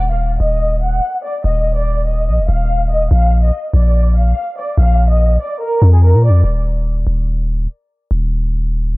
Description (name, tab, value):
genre	hip hop, drill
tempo	144 BPM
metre	4/4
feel	half-time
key	Eb harmonic minor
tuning	A4 = 439 Hz
part	clear studio violin section	melody	0.0-6.4 s	Ab4 to Gb5	-20 LUFS	equal	low-pass filter, analog delay
part	long sustained 808-style bass	bass	0.0-9.0 s	Eb1 to Bb2	-12 LUFS	equal	none
room	studio reverb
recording	dry, gritty hardware recording, cassette tape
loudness	-13 LUFS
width	side -23 dB against mid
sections	0.0-9.0 A section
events	filter sweep on violin section 0.0-9.0; break 6.4-9.0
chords	0.0 N.C.; 3.1 Bb; 6.4 Eb5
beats	0.19 0.61 1.03 | 1.44 1.86 2.28 2.69 | 3.11 3.53 3.94 4.36 | 4.78 5.19 5.61 6.03 | 6.44 6.86 7.28 7.69 | 8.11 8.53 8.94